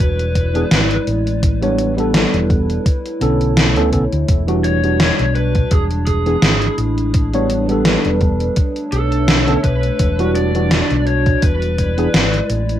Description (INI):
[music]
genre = vaporwave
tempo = 84 BPM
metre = 4/4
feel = swing 55% on 16ths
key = E dorian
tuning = A4 = 440 Hz
[part]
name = lead guitar through a small cranked amp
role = melody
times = 0.0-12.5 s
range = G#4 to D5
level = -23 LUFS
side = left 1 dB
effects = overdrive, tape echo
[part]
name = warbly tape-like pad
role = sustained chords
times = 0.0-12.8 s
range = G3 to D5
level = -22 LUFS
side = equal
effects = chorus, built-in reverb
[part]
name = fingered electric bass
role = bass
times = 0.0-12.8 s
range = E1 to D2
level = -19 LUFS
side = equal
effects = none
[part]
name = electronic kick drum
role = drums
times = 0.0-11.9 s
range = none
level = -16 LUFS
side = equal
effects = none
[part]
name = gated 80s digital drum machine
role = drums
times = 0.2-12.8 s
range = hi-hat, snare drum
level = -17 LUFS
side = equal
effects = gated reverb, gated reverb snare, overdrive
[part]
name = tine electric piano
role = accompaniment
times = 0.5-12.1 s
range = D3 to C#5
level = -19 LUFS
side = equal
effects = wide subtle chorus, vintage 12-bit sampler grit, tape echo
[sound]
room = light reverb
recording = rough home demo mix, cassette tape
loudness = -13 LUFS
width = side -11 dB against mid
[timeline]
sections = 0.0-12.8 A section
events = none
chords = 0.0 E7; 1.4 A9sus4; 2.9 Bm9; 4.3 Em9; 5.7 E7; 7.1 A9sus4; 8.6 Bm9; 10.0 Em9; 11.4 E7